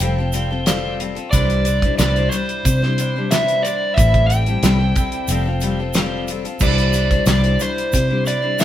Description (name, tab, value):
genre	folk rock and heartland rock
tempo	91 BPM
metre	4/4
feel	straight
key	C major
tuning	A4 = 439 Hz
part	overdriven slide guitar	melody	0.0-8.6 s	C5 to G5	-22 LUFS	right 2 dB	none
part	picked steel-string acoustic guitar	accompaniment	0.0-8.6 s	A2 to C5	-23 LUFS	left 5 dB	none
part	vintage muted fingered electric bass	bass	0.0-8.6 s	F1 to C3	-19 LUFS	equal	none
part	damped 70s drum kit	drums	0.0-8.6 s	crash cymbal, hi-hat, kick drum, snare drum	-20 LUFS	equal	none
part	tube shaker	percussion	0.3-8.6 s	none	-31 LUFS	right 7 dB	none
room	moderate stone room reverb, RT60 1.2 s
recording	band playing live in one room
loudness	-15 LUFS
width	side -12 dB against mid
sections	0.0-8.6 A section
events	none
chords	0.0 Fadd9; 1.3 Cadd9; 4.0 Am7; 5.3 Fadd9; 6.6 Cadd9